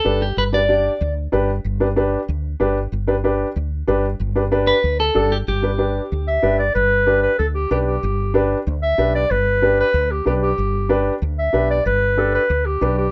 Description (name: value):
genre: latin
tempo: 188 BPM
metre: 4/4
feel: straight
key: G major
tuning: A4 = 440 Hz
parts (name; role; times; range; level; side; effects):
- clean electric guitar; second line; 0.0-1.1, 4.7-6.4 s; G4 to D5; -22 LUFS; equal; none
- warm upright piano; accompaniment; 0.0-13.0 s; D4 to D5; -22 LUFS; equal; none
- woody fretless electric bass; bass; 0.1-13.1 s; G1 to D2; -24 LUFS; equal; ensemble chorus
- mellow clarinet; melody; 6.3-13.1 s; G4 to E5; -21 LUFS; equal; none
room: light reverb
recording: rough home demo mix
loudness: -19 LUFS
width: mono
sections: 0.0-6.8 A section; 6.8-13.1 B section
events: clean electric guitar solo 0.0-6.8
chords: 0.0 G